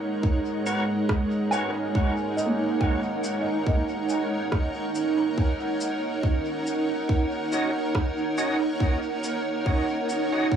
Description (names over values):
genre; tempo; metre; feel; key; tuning
ambient dub; 70 BPM; 4/4; swing 55% on 16ths; unclear; A4 = 442 Hz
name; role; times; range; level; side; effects
granular cloud pad; sustained chords; 0.0-10.6 s; G#3 to F#5; -25 LUFS; right 2 dB; built-in reverb
electronic kick drum; drums; 0.2-10.6 s; none; -24 LUFS; right 1 dB; cassette tape
percussive tonewheel organ; stabs; 0.7-1.7, 7.5-10.5 s; B3 to D#5; -32 LUFS; equal; overdrive, fast rotary speaker, dub echo
electronic shaker and rim click; drums; 0.7-10.3 s; none; -35 LUFS; equal; cassette tape, dub echo
felt-muted upright piano; arpeggios; 1.5-10.6 s; A#3 to G#5; -32 LUFS; right 1 dB; dub echo
room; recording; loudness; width
light reverb; home recording on cassette; -23 LUFS; side -8 dB against mid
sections
0.0-10.6 A section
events
none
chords
0.0 G#m11; 5.4 D#m7